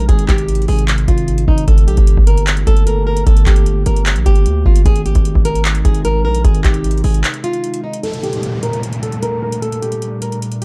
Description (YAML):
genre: hip hop, trap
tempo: 151 BPM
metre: 4/4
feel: half-time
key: G minor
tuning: A4 = 441 Hz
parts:
  - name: flamenco guitar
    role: melody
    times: 0.0-10.6 s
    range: Eb4 to Bb4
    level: -24 LUFS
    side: equal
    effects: low-pass filter
  - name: glassy FM pad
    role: sustained chords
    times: 0.0-10.6 s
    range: Bb2 to G4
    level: -27 LUFS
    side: equal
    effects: ensemble chorus, built-in reverb, low-pass filter
  - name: distorted 808-style bass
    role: bass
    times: 0.0-7.2 s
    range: G1 to D2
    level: -17 LUFS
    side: equal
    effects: distortion
  - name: booming analog drum machine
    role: drums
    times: 0.1-10.6 s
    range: handclaps, hi-hat, kick drum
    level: -16 LUFS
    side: equal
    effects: overdrive
  - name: downlifter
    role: sound effects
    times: 8.0-10.6 s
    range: none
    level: -30 LUFS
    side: equal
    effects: none
room: digital ambience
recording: dark, warm production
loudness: -14 LUFS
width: mono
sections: 0.0-8.0 A section; 8.0-10.6 B section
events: break 7.2-8.0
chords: 0.0 Ab; 1.7 Gmadd9; 4.9 Ab; 8.0 Gmadd9